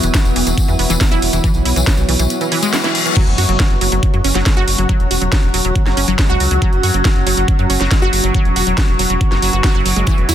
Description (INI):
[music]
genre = psychedelic trance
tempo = 139 BPM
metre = 4/4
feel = straight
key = unclear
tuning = A4 = 440 Hz
[part]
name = overtone-sweeping drone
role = sustained chords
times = 0.0-10.3 s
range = F#3 to F#4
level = -22 LUFS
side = equal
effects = chorus, built-in reverb, sidechain pumping
[part]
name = wide unison pluck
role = riff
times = 0.0-10.3 s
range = E3 to F#4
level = -20 LUFS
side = right 1 dB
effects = auto-pan, sidechain pumping, dub echo
[part]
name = round analog bass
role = bass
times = 0.0-10.3 s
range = E1 to F#2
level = -18 LUFS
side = equal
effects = none
[part]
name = drum and bass drum kit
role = drums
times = 0.0-10.3 s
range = crash cymbal, hi-hat, snare drum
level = -20 LUFS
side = equal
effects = overdrive
[part]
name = tambourine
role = percussion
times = 0.0-3.1, 10.1-10.3 s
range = none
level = -26 LUFS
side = left 4 dB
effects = none
[part]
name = granular cloud pad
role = texture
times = 0.0-10.3 s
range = B3 to F#5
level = -24 LUFS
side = equal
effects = built-in reverb, sidechain pumping
[part]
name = electronic kick drum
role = drums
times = 0.1-10.2 s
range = none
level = -14 LUFS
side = equal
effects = overdrive
[part]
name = reverse cymbal and impact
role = sound effects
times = 2.5-4.9 s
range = none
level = -24 LUFS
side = left 4 dB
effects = none
[sound]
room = little or no reverb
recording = dense, heavily limited modern master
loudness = -12 LUFS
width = side -10 dB against mid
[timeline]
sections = 0.0-3.2 A section; 3.2-10.3 B section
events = reverse cymbal 2.5-3.2; drop 3.2-10.3; impact 3.2-4.9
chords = 0.0 E5